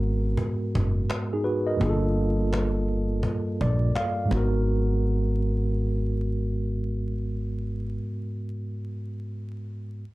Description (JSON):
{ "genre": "hip hop, boom-bap hip-hop", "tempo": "84 BPM", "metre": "4/4", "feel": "swing 63% on 16ths", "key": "unclear", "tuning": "A4 = 440 Hz", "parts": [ { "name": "mellow tine electric piano", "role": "accompaniment", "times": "0.0-10.0 s", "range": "G2 to F5", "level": "-27 LUFS", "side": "equal", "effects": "medium stereo tremolo, low-pass filter" }, { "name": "upright bass", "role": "bass", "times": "0.0-8.0 s", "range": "F#1 to Bb1", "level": "-27 LUFS", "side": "equal", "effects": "none" }, { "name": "cajon", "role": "drums", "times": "0.0-4.5 s", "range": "none", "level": "-31 LUFS", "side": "equal", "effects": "none" } ], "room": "light reverb", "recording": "dark, warm production, vinyl crackle", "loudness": "-24 LUFS", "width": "side -19 dB against mid", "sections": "0.0-4.7 A section; 4.7-7.5 B section", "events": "filter sweep on tine electric piano 0.0-4.7", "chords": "0.0 G#m7; 1.8 Gm7; 4.3 G#m7", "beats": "0.38 1.10 | 1.81 2.53 3.24 3.95 | 4.67 5.38 6.10 6.81" }